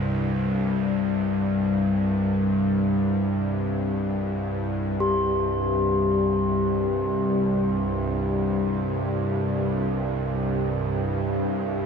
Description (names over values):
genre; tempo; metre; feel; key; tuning
dark ambient drone; free time; none; none; unclear; A4 = 440 Hz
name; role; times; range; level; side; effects
bowed-like drone; drone; 0.0-11.9 s; C2 to G2; -23 LUFS; equal; built-in reverb
bronze singing bowl; texture; 5.0-11.9 s; G4; -27 LUFS; left 3 dB; stereo widening
room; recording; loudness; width
wet huge ambient reverb, RT60 7.2 s; none; -22 LUFS; side -6 dB against mid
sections
0.0-5.0 A section; 5.0-11.9 B section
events
none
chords
0.0 C5